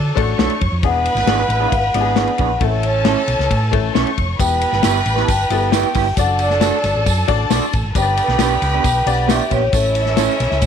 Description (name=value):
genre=uptempo 1960s-style soul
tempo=135 BPM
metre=4/4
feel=straight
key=D major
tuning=A4 = 436 Hz
part: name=clear horn section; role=second line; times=0.0-10.7 s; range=D3 to B4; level=-28 LUFS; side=equal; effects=none
part: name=warm studio string section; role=second line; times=0.0-10.7 s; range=E4 to C#6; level=-24 LUFS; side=right 1 dB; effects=none
part: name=hollow-body short-scale fingered electric bass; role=bass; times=0.0-10.7 s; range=E1 to D3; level=-20 LUFS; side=right 1 dB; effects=none
part: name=bright upright piano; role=accompaniment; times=0.2-10.3 s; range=A3 to D5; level=-24 LUFS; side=left 14 dB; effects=none
part: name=warm soul drum kit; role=drums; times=0.2-10.7 s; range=hi-hat, kick drum, ride cymbal, snare drum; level=-21 LUFS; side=left 4 dB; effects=none
part: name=electric guitar through a small old amp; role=stabs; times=0.4-10.3 s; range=E3 to B4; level=-23 LUFS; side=right 16 dB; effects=none
part: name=vibraphone with soft mallets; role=melody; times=0.9-10.7 s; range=C#5 to A5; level=-20 LUFS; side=moving between left 6 dB and right 3 dB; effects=auto-pan
part: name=tambourine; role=percussion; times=4.4-10.7 s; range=none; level=-30 LUFS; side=right 18 dB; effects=none
room=studio reverb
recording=1960s-style stereo with parts hard left and right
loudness=-14 LUFS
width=side -8 dB against mid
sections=0.0-10.7 A section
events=none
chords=0.0 D; 0.8 E7; 2.6 A; 4.4 Em; 6.2 D/F#; 8.0 G; 9.7 A